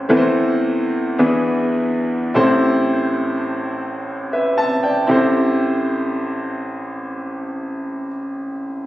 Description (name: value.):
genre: gospel.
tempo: 38-56 BPM (dotted quarters).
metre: 6/8.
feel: straight.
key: A minor.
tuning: A4 = 440 Hz.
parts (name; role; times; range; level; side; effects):
clear grand piano; solo; 0.0-8.9 s; A1 to A5; -17 LUFS; equal; none.
room: moderate scoring stage reverb, RT60 1.7 s.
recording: recorded on a phone in the room, studio reverb, compression.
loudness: -17 LUFS.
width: side -14 dB against mid.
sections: 0.1-5.1 A section; 5.1-8.9 B section.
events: slowing down 0.1-5.1.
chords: 0.1 Am/E; 1.2 E7; 2.3 Am7.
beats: | 0.09 1.18 | 2.34 3.62 | 5.09 6.68 | 8.28.